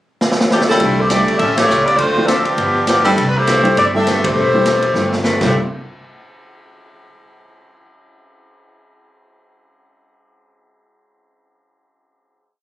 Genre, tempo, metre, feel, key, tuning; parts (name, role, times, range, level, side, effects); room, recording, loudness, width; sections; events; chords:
jazz, big band swing; 203 BPM; 4/4; swing 60% on 8ths; C major; A4 = 441 Hz
swinging big-band drum kit; drums; 0.2-5.5 s; crash cymbal, hi-hat, kick drum, ride cymbal, snare drum; -19 LUFS; equal
clear saxophone section; melody; 0.5-5.5 s; E3 to E5; -15 LUFS; equal; plate reverb
picked swing-style acoustic guitar; accompaniment; 0.8-5.5 s; G2 to F4; -22 LUFS; left 2 dB
warm upright piano; accompaniment; 0.8-5.5 s; D3 to E4; -20 LUFS; right 1 dB
upright bass; bass; 0.8-5.5 s; E1 to D2; -23 LUFS; equal
moderate club reverb, RT60 0.6 s; recorded on a phone in the room, club reverb, compression; -12 LUFS; side -14 dB against mid
0.0-0.8 pickup bar; 0.8-5.5 A section; 5.5-6.7 final hit
drum fill 0.2-0.8, 4.9-5.5; band accent 1.6, 4.2
0.0 Emadd11; 0.8 C69; 1.4 A7b13; 2.0 Dm7; 2.6 G13; 3.2 C69; 5.5 N.C.